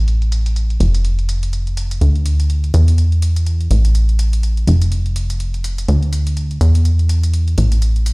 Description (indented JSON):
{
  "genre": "piano house",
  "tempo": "124 BPM",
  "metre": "4/4",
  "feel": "swing 58% on 16ths",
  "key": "unclear",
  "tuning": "A4 = 440 Hz",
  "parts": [
    { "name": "plucky analog bass", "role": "bass", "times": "0.0-8.1 s", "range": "F1 to E2", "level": "-13 LUFS", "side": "equal", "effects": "none" },
    { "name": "electronic hi-hat", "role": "drums", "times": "0.1-8.1 s", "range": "none", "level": "-30 LUFS", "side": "equal", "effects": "overdrive, low-pass filter on hats, low-pass filter on room" }
  ],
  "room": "little or no reverb",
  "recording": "played on a big sound system in a bare room, stone room reverb",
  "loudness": "-13 LUFS",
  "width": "side -28 dB against mid",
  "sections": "0.0-8.1 A section",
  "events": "none",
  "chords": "none",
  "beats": "| 0.08 0.56 1.05 1.53 | 2.01 2.50 2.98 3.46 | 3.95 4.43 4.92 5.40 | 5.88 6.37 6.85 7.34 | 7.82"
}